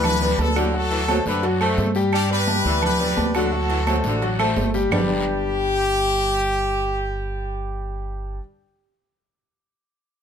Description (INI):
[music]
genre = latin, salsa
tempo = 172 BPM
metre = 4/4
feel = straight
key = G major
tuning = A4 = 440 Hz
[part]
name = clear saxophone section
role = second line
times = 0.0-5.0 s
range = D3 to A3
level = -28 LUFS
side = equal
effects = none
[part]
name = bright concert grand piano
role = accompaniment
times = 0.0-8.4 s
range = F#3 to G5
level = -26 LUFS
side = left 3 dB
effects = none
[part]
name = upright bass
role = bass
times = 0.0-8.4 s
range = G1 to G2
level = -25 LUFS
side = equal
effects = none
[part]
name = agogo bells and timbales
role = percussion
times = 0.0-5.0 s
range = none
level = -29 LUFS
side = right 6 dB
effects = none
[part]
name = claves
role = percussion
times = 0.0-5.0 s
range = none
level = -32 LUFS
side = right 6 dB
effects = none
[part]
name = congas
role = percussion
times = 0.0-5.0 s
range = none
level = -28 LUFS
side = right 2 dB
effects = none
[part]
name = guiro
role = percussion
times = 0.0-5.0 s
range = none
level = -36 LUFS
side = left 4 dB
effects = none
[part]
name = brilliant horn section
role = melody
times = 0.1-8.4 s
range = D4 to B4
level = -24 LUFS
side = left 1 dB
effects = plate reverb
[sound]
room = moderate studio reverb, RT60 0.6 s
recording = none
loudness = -19 LUFS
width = side -8 dB against mid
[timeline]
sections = 0.0-4.9 A section; 4.9-7.7 B section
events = none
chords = 0.0 G; 0.7 D7; 2.1 G; 3.5 D7; 4.9 G